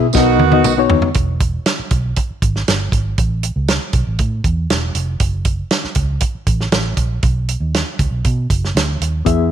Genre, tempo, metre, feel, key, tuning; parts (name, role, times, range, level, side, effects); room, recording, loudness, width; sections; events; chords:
uptempo 1960s-style soul; 118 BPM; 4/4; straight; E major; A4 = 440 Hz
reed electric piano; accompaniment; 0.0-1.1, 9.2-9.5 s; B3 to E5; -15 LUFS; left 9 dB; overdrive, fast tremolo
vintage muted fingered electric bass; bass; 0.0-9.5 s; E1 to B2; -18 LUFS; right 1 dB
warm horn section; second line; 0.1-0.9 s; D#3 to F#4; -18 LUFS; right 14 dB
warm soul drum kit; drums; 0.1-9.4 s; hi-hat, kick drum, snare drum, toms; -17 LUFS; right 2 dB
tambourine; percussion; 0.1-0.8 s; -26 LUFS; right 14 dB
light reverb, studio reverb; 1960s-style stereo with parts hard left and right; -14 LUFS; side -10 dB against mid
0.0-1.2 A section; 1.2-9.5 B section
drum fill 0.1-1.2
0.1 B; 1.2 E; 3.2 A; 5.2 F#m; 7.2 B